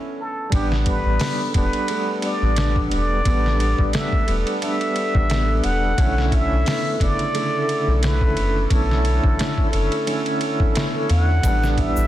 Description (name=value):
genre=trip hop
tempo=88 BPM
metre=4/4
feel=swing 55% on 16ths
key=unclear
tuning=A4 = 441 Hz
part: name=felt-muted upright piano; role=arpeggios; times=0.0-12.1 s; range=A3 to D4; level=-30 LUFS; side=right 2 dB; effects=vintage 12-bit sampler grit, ping-pong delay
part: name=trumpet with plunger mute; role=melody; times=0.2-12.1 s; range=G4 to F#5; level=-26 LUFS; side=equal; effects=tape echo
part: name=bright tonewheel organ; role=accompaniment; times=0.5-12.1 s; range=C#3 to E4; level=-25 LUFS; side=equal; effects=slow rotary speaker, tremolo, tape echo
part: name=warbly tape-like pad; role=sustained chords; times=1.0-12.1 s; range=E4 to A4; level=-30 LUFS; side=equal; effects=chorus, built-in reverb, vintage 12-bit sampler grit
part: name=soft dub sub bass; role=bass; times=0.5-12.1 s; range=E1 to E2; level=-20 LUFS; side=equal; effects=none
part: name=trip hop sampler-style drum kit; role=drums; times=0.5-12.0 s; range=hi-hat, kick drum, ride cymbal, snare drum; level=-23 LUFS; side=equal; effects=none
part: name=egg shaker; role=percussion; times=11.4-12.1 s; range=none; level=-36 LUFS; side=right 2 dB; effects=none
room=light reverb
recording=dense, heavily limited modern master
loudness=-18 LUFS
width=side -13 dB against mid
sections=0.5-12.1 A section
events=stop 0.0-0.5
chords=0.0 B7sus2; 0.5 A9sus4; 6.0 Bm11; 11.4 A9sus4